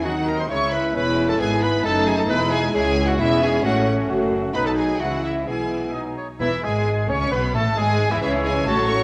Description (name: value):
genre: quick classical-period movement for symphony orchestra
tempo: 133 BPM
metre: 2/4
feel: straight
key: E major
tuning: A4 = 444 Hz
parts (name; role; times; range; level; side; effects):
- rich chamber violin section; melody; 0.0-9.0 s; E5 to C#6; -31 LUFS; equal; none
- clear clarinet; second line; 0.0-9.0 s; E4 to C#5; -29 LUFS; equal; none
- mellow hollow flute section; second line; 0.0-9.0 s; E5 to E6; -33 LUFS; equal; none
- rich chamber violin section; second line; 0.0-9.0 s; E4 to C#5; -35 LUFS; equal; none
- warm bassoon; accompaniment; 0.0-9.0 s; E3 to F#4; -30 LUFS; equal; none
- dark French horn section; sustained chords; 0.0-9.0 s; E3 to E4; -30 LUFS; equal; none
- rich studio cello section; bass; 0.0-9.0 s; C#2 to Eb3; -30 LUFS; equal; none
- rich studio double bass section; bass; 0.0-9.0 s; E1 to Eb2; -31 LUFS; equal; none
- rich chamber viola section; accompaniment; 0.1-9.0 s; E3 to F#4; -30 LUFS; equal; none
- warm oboe; second line; 5.9-9.0 s; E4 to D#5; -31 LUFS; equal; none
room: wet scoring stage reverb, RT60 1.5 s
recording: worn, warbling old tape, cassette tape, warbly pitch drift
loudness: -21 LUFS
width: mono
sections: 0.0-6.4 A section; 6.4-9.0 B section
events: none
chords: 0.1 Cdim/Eb; 0.5 C#m; 1.0 E; 1.8 D#dim/F#; 2.3 E; 2.7 C#m; 3.6 F#m/A; 4.5 B; 5.0 C#m; 5.5 E/B; 5.9 B; 6.4 E; 8.2 C#m